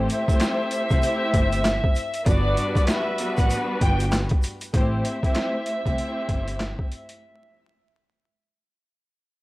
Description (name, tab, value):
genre	hip hop, boom-bap hip-hop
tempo	97 BPM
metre	4/4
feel	swing 60% on 16ths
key	A dorian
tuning	A4 = 440 Hz
part	warm studio string section	accompaniment	0.0-6.8 s	G3 to C5	-28 LUFS	left 1 dB	cassette tape, high-pass filter, low-pass filter
part	warm horn section	stabs	0.0-4.4 s	G3 to C5	-34 LUFS	right 1 dB	high-pass filter, low-pass filter, analog delay
part	upright bass	bass	0.0-6.7 s	G1 to C2	-26 LUFS	equal	none
part	warm studio violin section	melody	0.1-7.2 s	D5 to G5	-27 LUFS	equal	high-pass filter, low-pass filter
part	boom bap sampler-style drum kit	drums	0.1-7.2 s	handclaps, hi-hat, kick drum, snare drum	-23 LUFS	equal	overdrive
part	egg shaker	percussion	0.1-4.7 s	none	-44 LUFS	right 1 dB	none
room	studio reverb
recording	dry, gritty hardware recording, vinyl crackle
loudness	-20 LUFS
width	side -19 dB against mid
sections	0.0-4.7 A section; 4.7-9.4 B section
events	fade-out 4.7-9.4; break 7.2-9.4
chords	0.0 Am7; 2.3 Gmaj7; 4.7 Am7; 7.2 N.C.